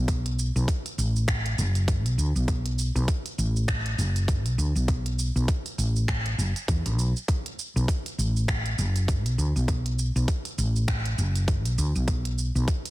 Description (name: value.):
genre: organic downtempo.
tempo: 100 BPM.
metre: 4/4.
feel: swing 58% on 16ths.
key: B minor.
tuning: A4 = 440 Hz.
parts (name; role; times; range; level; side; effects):
woody fretless electric bass; bass; 0.0-12.7 s; F#1 to E2; -24 LUFS; equal; none.
electronic kick drum; drums; 0.1-12.8 s; none; -28 LUFS; equal; overdrive.
organic electronic drum kit; drums; 0.1-12.9 s; cabasa, finger snaps, hi-hat; -33 LUFS; right 2 dB; overdrive, soft clipping on snare.
room: little or no reverb.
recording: dense, heavily limited modern master.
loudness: -23 LUFS.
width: side -18 dB against mid.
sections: 0.0-12.9 A section.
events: none.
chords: none.